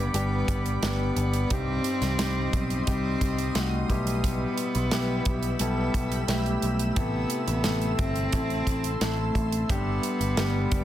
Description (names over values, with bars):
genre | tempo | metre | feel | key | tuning
piano-driven pop | 88 BPM | 4/4 | straight | G major | A4 = 440 Hz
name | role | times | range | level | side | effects
dark cello | melody | 0.0-10.8 s | A3 to C4 | -30 LUFS | equal | none
clear concert grand piano | accompaniment | 0.0-10.8 s | G2 to A4 | -31 LUFS | left 3 dB | none
shimmering ambient pad | sustained chords | 0.0-10.8 s | G3 to E6 | -37 LUFS | right 2 dB | chorus, built-in reverb
picked electric bass | bass | 0.0-10.8 s | F#1 to C2 | -29 LUFS | equal | none
modern studio drum kit | drums | 0.1-10.8 s | hi-hat, kick drum, snare drum | -30 LUFS | right 1 dB | none
room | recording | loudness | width
light reverb | dense, heavily limited modern master | -24 LUFS | side -12 dB against mid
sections
0.0-10.8 A section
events
none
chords
0.0 G; 1.5 Cm; 3.9 Em/B; 7.0 Am; 9.7 G